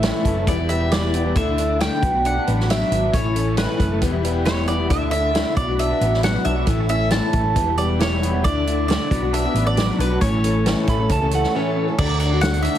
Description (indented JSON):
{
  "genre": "folk rock and heartland rock",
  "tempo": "136 BPM",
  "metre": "4/4",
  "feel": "straight",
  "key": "D major",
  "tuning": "A4 = 440 Hz",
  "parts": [
    { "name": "mandolin", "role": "melody", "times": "0.0-12.8 s", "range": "B4 to A5", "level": "-24 LUFS", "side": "right 1 dB", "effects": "slapback echo" },
    { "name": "picked plugged-in steel-string acoustic guitar", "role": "accompaniment", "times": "0.0-12.8 s", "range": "E2 to A4", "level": "-25 LUFS", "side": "left 6 dB", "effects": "none" },
    { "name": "tonewheel organ", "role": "sustained chords", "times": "0.0-12.0 s", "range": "E4 to B5", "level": "-34 LUFS", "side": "equal", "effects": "chorus vibrato, fast rotary speaker" },
    { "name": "electric guitar through a small old amp", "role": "riff", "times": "0.0-12.8 s", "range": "E2 to D4", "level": "-26 LUFS", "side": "right 2 dB", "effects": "analog chorus" },
    { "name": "hollow-body short-scale fingered electric bass", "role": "bass", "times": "0.0-12.7 s", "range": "E1 to D2", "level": "-22 LUFS", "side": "equal", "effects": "none" },
    { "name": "vintage drum kit", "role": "drums", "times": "0.0-12.8 s", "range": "crash cymbal, hi-hat, kick drum, snare drum", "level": "-24 LUFS", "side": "equal", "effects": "none" },
    { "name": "electric slide guitar", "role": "second line", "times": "10.9-11.9 s", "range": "C#5 to B5", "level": "-25 LUFS", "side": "right 6 dB", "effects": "none" }
  ],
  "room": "light reverb, small room ambience",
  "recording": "heavily compressed radio sound, multiband compression",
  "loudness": "-17 LUFS",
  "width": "side -11 dB against mid",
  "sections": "0.0-12.0 A section",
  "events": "break 11.5-12.0",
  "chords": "0.5 Em; 1.4 Dsus2; 2.0 Bm; 3.1 A; 4.0 Em; 4.9 Dsus2; 5.6 Bm; 6.7 A; 7.6 Em; 8.4 Dsus2; 9.1 Bm; 10.2 A; 12.0 D"
}